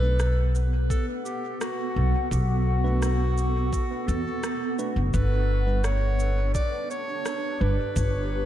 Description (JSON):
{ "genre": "ambient dub", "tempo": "85 BPM", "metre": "4/4", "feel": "straight", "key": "B minor", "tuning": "A4 = 442 Hz", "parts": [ { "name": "clear clarinet", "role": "melody", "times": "0.0-8.5 s", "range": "F#4 to D5", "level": "-31 LUFS", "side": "equal", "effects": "dub echo" }, { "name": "granular cloud pad", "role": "sustained chords", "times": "0.0-8.5 s", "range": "B3 to F#5", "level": "-32 LUFS", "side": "right 1 dB", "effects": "built-in reverb" }, { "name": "mellow tine electric piano", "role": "stabs", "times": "0.0-7.8 s", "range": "G3 to B4", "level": "-38 LUFS", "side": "right 2 dB", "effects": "dub echo" }, { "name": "upright bass", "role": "bass", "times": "0.0-8.5 s", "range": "F#1 to E2", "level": "-24 LUFS", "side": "equal", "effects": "none" }, { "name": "electronic rim click and cabasa", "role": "drums", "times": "0.2-8.1 s", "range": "none", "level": "-38 LUFS", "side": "right 1 dB", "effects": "dub echo" }, { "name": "electronic kick drum", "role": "drums", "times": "0.9-8.1 s", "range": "none", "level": "-27 LUFS", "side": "equal", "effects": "none" } ], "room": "light reverb", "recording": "none", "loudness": "-23 LUFS", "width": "side -12 dB against mid", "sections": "0.0-8.5 A section", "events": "none", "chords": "0.0 B7(no3); 5.1 G" }